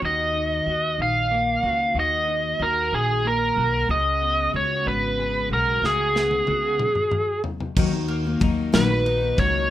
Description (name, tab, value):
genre	six-eight pop ballad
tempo	62 BPM (dotted quarters)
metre	6/8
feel	straight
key	Eb minor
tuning	A4 = 440 Hz
part	twelve-string electric guitar	accompaniment	0.0-9.7 s	Db3 to Gb4	-29 LUFS	left 1 dB	double-tracked left and right
part	upright bass	bass	0.0-9.7 s	Ab1 to Eb2	-28 LUFS	equal	none
part	biting lead guitar	melody	0.1-9.7 s	Ab4 to F5	-21 LUFS	right 1 dB	overdrive
part	modern studio drum kit	drums	5.8-9.5 s	crash cymbal, kick drum, ride cymbal, snare drum, toms	-25 LUFS	equal	none
part	picked steel-string acoustic guitar	arpeggios	7.8-9.7 s	Eb3 to Gb4	-25 LUFS	left 7 dB	none
room	light reverb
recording	rough home demo mix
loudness	-20 LUFS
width	side -13 dB against mid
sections	0.0-7.8 A section; 7.8-9.7 B section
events	drum fill 5.8-7.8; stop 6.8-7.8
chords	0.0 Ebm; 3.9 Db7sus4; 7.8 Ebm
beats	| 0.03 0.99 | 1.96 2.93 | 3.90 4.86 | 5.83 6.80 | 7.77 8.74